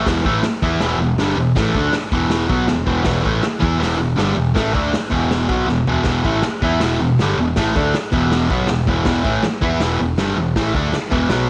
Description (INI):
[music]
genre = garage rock duo or trio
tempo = 160 BPM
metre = 4/4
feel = straight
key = unclear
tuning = A4 = 439 Hz
[part]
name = fuzz guitar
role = riff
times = 0.0-11.5 s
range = E2 to E4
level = -20 LUFS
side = equal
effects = distortion
[part]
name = modern bright picked electric bass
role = bass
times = 0.0-11.5 s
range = E1 to E2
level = -26 LUFS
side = equal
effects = none
[part]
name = raw garage drum kit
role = drums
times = 0.1-11.4 s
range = hi-hat, kick drum, snare drum, toms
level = -25 LUFS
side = equal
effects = none
[sound]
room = small room ambience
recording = faint mains hum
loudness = -18 LUFS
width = mono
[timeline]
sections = 0.1-11.5 A section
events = drum fill 5.7-6.1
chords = 0.1 E5